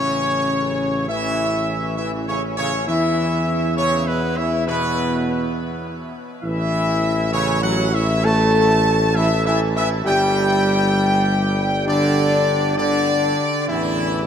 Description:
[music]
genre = classical, ceremonial fanfare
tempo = 67 BPM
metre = 4/4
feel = straight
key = A major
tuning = A4 = 440 Hz
[part]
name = clear trumpet section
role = melody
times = 0.0-14.3 s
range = E4 to A5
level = -22 LUFS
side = equal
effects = none
[part]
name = mellow French horn section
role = sustained chords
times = 0.0-14.3 s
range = E3 to A4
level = -23 LUFS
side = left 1 dB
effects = none
[part]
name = warm trombone section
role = sustained chords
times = 0.0-14.3 s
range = E2 to A3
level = -24 LUFS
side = equal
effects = none
[part]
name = mellow tuba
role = bass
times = 0.0-14.3 s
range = G1 to E2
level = -23 LUFS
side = equal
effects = none
[sound]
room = wet huge ambient reverb, RT60 7.4 s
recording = in a vast, echoing space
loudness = -17 LUFS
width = side -8 dB against mid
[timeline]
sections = 0.0-14.3 A section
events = none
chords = 0.0 A; 2.9 E5; 6.4 A5; 10.1 G5; 13.7 A5

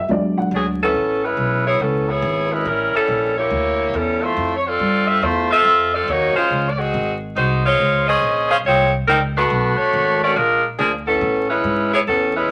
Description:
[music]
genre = jazz, big band swing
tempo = 140 BPM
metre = 4/4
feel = swing 66% on 8ths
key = unclear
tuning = A4 = 440 Hz
[part]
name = dark upright piano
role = accompaniment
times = 0.0-0.8 s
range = F#3 to F#5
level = -21 LUFS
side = equal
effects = none
[part]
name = upright bass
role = bass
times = 0.0-12.5 s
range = G#1 to A2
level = -27 LUFS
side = equal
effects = none
[part]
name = mellow saxophone section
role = melody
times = 0.5-12.5 s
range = E3 to E#5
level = -19 LUFS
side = equal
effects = none
[sound]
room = moderate studio reverb, RT60 0.8 s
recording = vinyl crackle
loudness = -18 LUFS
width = mono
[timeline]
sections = 0.9-12.5 A section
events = none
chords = 0.1 E9; 0.9 Amaj9; 2.7 A7b9; 4.4 Dm11; 6.1 D#m7; 6.9 G#7; 7.8 C#maj7; 9.5 Bm9; 10.4 Bb7; 11.2 Amaj9

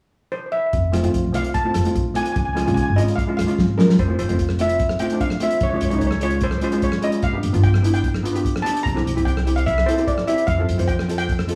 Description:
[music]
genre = calypso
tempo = 148 BPM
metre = 4/4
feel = straight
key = F major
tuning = A4 = 439 Hz
[part]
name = steel pan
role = melody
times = 0.3-11.6 s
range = Bb4 to Bb5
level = -26 LUFS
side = equal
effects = slapback echo
[part]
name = upright bass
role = bass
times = 0.7-11.5 s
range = F1 to Db3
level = -24 LUFS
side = equal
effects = none
[part]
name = warm soul drum kit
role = drums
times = 0.7-11.6 s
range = hi-hat, kick drum, rim click, snare drum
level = -26 LUFS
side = equal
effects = none
[part]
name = steel pan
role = accompaniment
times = 0.9-11.6 s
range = Ab3 to C5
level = -25 LUFS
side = equal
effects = none
[sound]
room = wet studio reverb, RT60 0.6 s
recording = heard from further back in the room, studio reverb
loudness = -20 LUFS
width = mono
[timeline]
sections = 0.7-4.0 A section; 4.0-11.6 B section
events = drum fill 3.6-4.0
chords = 0.0 N.C.; 0.7 Fmaj7; 2.4 Db; 4.0 Fmaj7; 5.6 Db; 7.2 G7; 8.9 C7; 10.5 F

